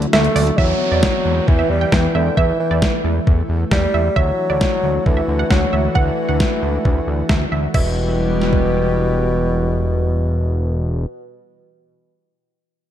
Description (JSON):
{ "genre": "synth-pop", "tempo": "134 BPM", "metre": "4/4", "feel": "straight", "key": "E minor", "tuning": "A4 = 439 Hz", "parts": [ { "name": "lush unison pad", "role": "sustained chords", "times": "0.0-11.1 s", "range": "D3 to G5", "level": "-24 LUFS", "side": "equal", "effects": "chorus" }, { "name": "fat analog bass", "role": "bass", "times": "0.0-11.1 s", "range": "E1 to E2", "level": "-19 LUFS", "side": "equal", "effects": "none" }, { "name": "clean 12-bit digital drum machine", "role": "drums", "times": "0.0-8.6 s", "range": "crash cymbal, hi-hat, kick drum, snare drum", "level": "-18 LUFS", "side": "equal", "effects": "none" }, { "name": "mellow bassoon", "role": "melody", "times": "0.1-11.1 s", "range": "B2 to A3", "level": "-21 LUFS", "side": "left 1 dB", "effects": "digital delay" }, { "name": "wide unison pluck", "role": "second line", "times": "0.1-9.0 s", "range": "D5 to G5", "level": "-25 LUFS", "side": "right 6 dB", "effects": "digital delay" }, { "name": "downlifter", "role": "sound effects", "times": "0.6-4.2 s", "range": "none", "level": "-28 LUFS", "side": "right 1 dB", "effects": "none" } ], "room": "light reverb, digital ambience", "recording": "dark, warm production", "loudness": "-15 LUFS", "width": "side -10 dB against mid", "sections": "0.6-7.7 A section; 7.7-11.3 B section", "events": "none", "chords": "0.0 Dadd9; 0.6 Em; 4.2 Dadd9; 7.7 Em" }